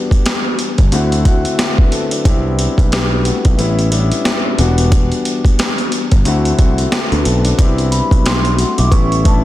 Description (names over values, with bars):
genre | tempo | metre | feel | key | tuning
hip hop, boom-bap hip-hop | 90 BPM | 4/4 | swing 59% on 16ths | unclear | A4 = 440 Hz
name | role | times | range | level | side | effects
dark baby grand piano | accompaniment | 0.0-9.4 s | E2 to B4 | -18 LUFS | left 3 dB | high-pass filter, low-pass filter
boom bap sampler-style drum kit | drums | 0.1-9.4 s | hi-hat, kick drum, snare drum | -14 LUFS | equal | none
picked electric bass | bass | 0.8-9.4 s | E1 to D2 | -15 LUFS | equal | none
vibraphone with soft mallets | melody | 7.9-9.4 s | A5 to D6 | -20 LUFS | equal | high-pass filter, low-pass filter
room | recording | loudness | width
little or no reverb | dense, heavily limited modern master | -12 LUFS | side -14 dB against mid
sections
0.0-7.6 A section; 7.6-9.4 B section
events
none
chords
0.0 Em7; 0.9 D7; 2.3 Cmaj7; 3.6 A7; 4.6 Em7; 6.3 D7; 7.6 Cmaj7; 8.9 A7